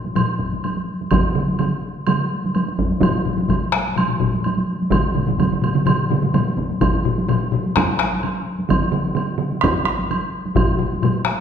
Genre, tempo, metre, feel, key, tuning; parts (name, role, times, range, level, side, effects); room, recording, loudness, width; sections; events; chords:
japanese traditional, taiko drum ensemble; 127 BPM; 4/4; straight
taiko ensemble; percussion; 0.0-11.1 s; -23 LUFS; right 1 dB
taiko ensemble; percussion; 0.2-11.4 s; -22 LUFS; left 5 dB
woodblock; percussion; 0.2-11.1 s; -27 LUFS; right 2 dB
taiko ensemble; percussion; 0.4-10.7 s; -22 LUFS; equal
solo taiko drums; percussion; 1.1-10.0 s; -22 LUFS; right 5 dB
wet recital hall reverb, RT60 1.6 s; recorded in a church or concert hall; -17 LUFS; side -8 dB against mid
0.0-6.8 A section; 6.8-11.4 B section